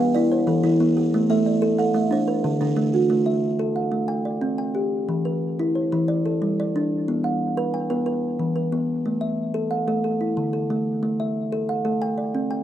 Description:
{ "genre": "southern african traditional, mbira-style interlocking cycle", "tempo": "121 BPM (dotted quarters)", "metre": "12/8", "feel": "straight", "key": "A equiheptatonic", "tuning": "A4 = 439 Hz", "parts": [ { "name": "buzzing kalimba", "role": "arpeggios", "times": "0.0-3.3 s", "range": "D3 to F#5-43c", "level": "-25 LUFS", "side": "right 7 dB", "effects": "none" }, { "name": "kalimba", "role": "arpeggios", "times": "0.0-12.6 s", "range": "D3 to G5+29c", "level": "-21 LUFS", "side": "equal", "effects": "slapback echo" } ], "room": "light reverb", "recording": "recorded outdoors, with no room sound", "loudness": "-20 LUFS", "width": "side -11 dB against mid", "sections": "0.0-3.1 A section; 3.1-12.6 A section", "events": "none", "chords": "0.2 Em; 1.1 A5; 2.1 D; 3.1 A5; 4.1 C5; 5.1 E5; 6.1 G5; 7.1 B5; 8.1 Em; 9.1 A5; 10.0 D; 11.0 A5; 12.0 C5", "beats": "0.15 0.65 | 1.14 1.63 2.12 2.62 | 3.11 3.61 4.10 4.60 | 5.09 5.59 6.09 6.58 | 7.08 7.57 8.07 8.56 | 9.06 9.55 10.04 10.54 | 11.03 11.52 12.02 12.51" }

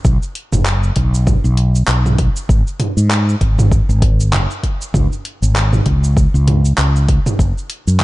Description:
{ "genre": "sunset chillout", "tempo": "98 BPM", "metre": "4/4", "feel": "swing 58% on 16ths", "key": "unclear", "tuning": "A4 = 440 Hz", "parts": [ { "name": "deep house drum kit", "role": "drums", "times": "0.0-8.0 s", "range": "cabasa, handclaps, hi-hat, toms", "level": "-20 LUFS", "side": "right 1 dB", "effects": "none" }, { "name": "electronic kick drum", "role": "drums", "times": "0.0-7.5 s", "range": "none", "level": "-16 LUFS", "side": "equal", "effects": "none" }, { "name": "mellow fretless electric bass", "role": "bass", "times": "0.1-8.0 s", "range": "F#1 to G#2", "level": "-13 LUFS", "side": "equal", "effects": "none" } ], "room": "little or no reverb", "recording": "dark, warm production, nothing above 10.5 kHz", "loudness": "-12 LUFS", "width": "side -18 dB against mid", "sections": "0.0-8.0 A section", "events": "none", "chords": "none", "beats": "| 0.04 0.65 1.27 1.88 | 2.49 3.10 3.72 4.33 | 4.94 5.55 6.17 6.78 | 7.39 8.00" }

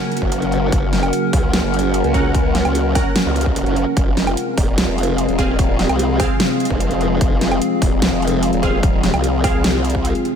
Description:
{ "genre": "heavy wobble dubstep", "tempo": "148 BPM", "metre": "4/4", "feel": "half-time", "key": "F phrygian", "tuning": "A4 = 439 Hz", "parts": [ { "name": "supersaw pad", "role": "sustained chords", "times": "0.0-10.4 s", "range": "C3 to Gb4", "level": "-23 LUFS", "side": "equal", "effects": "phaser, sidechain pumping, low-pass filter" }, { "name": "warbly tape-like pad", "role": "texture", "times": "0.0-10.4 s", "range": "C4 to Gb5", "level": "-22 LUFS", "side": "left 2 dB", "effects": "chorus, built-in reverb, sidechain pumping" }, { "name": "dubstep drum kit", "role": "drums", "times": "0.1-10.3 s", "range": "hi-hat, snare drum, woodblock", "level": "-23 LUFS", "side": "right 1 dB", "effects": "none" }, { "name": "formant-sweep wobble bass", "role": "bass", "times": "0.2-10.1 s", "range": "Eb1 to Db2", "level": "-20 LUFS", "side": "equal", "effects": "chorus, overdrive" }, { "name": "electronic kick drum", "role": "drums", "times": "0.2-10.0 s", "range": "none", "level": "-19 LUFS", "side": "equal", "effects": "overdrive" }, { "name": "supersaw stab", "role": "stabs", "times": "2.1-9.6 s", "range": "C4 to Gb5", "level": "-27 LUFS", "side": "right 1 dB", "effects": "tape echo" } ], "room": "moderate cathedral reverb, RT60 6.4 s", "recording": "dreamy mix soaked in reverb", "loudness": "-15 LUFS", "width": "side -8 dB against mid", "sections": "0.0-10.4 A section", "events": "none", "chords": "0.0 Gb; 4.0 Fm", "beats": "0.32 | 0.72 1.13 1.53 1.94 | 2.35 2.75 3.16 3.56 | 3.97 4.37 4.78 5.18 | 5.59 5.99 6.40 6.80 | 7.21 7.62 8.02 8.43 | 8.83 9.24 9.64 10.05" }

